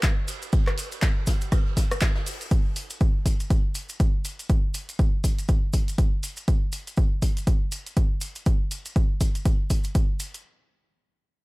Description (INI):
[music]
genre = house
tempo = 121 BPM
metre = 4/4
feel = swing 59% on 16ths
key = none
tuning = none
[part]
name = electronic kick drum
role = drums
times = 0.0-10.1 s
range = none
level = -22 LUFS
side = equal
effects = none
[part]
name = jazz brush drum kit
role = drums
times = 0.0-2.4 s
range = hi-hat, ride cymbal, snare drum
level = -38 LUFS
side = right 2 dB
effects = sidechain pumping on cymbals, high-pass filter on cymbals, sidechain pumping on hats, high-pass filter on hats, high-pass filter on snare, high-pass filter on room
[part]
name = punchy analog drum machine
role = drums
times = 0.0-10.4 s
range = handclaps, hi-hat, rim click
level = -33 LUFS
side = equal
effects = none
[part]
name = maracas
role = percussion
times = 0.0-10.4 s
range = none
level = -38 LUFS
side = left 1 dB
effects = none
[sound]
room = studio ambience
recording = none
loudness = -22 LUFS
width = side -23 dB against mid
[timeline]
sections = 0.0-10.4 A section; 10.4-11.4 B section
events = none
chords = none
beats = 0.03 | 0.53 1.02 1.52 2.02 | 2.51 3.01 3.50 4.00 | 4.50 4.99 5.49 5.98 | 6.48 6.97 7.47 7.97 | 8.46 8.96 9.45 9.95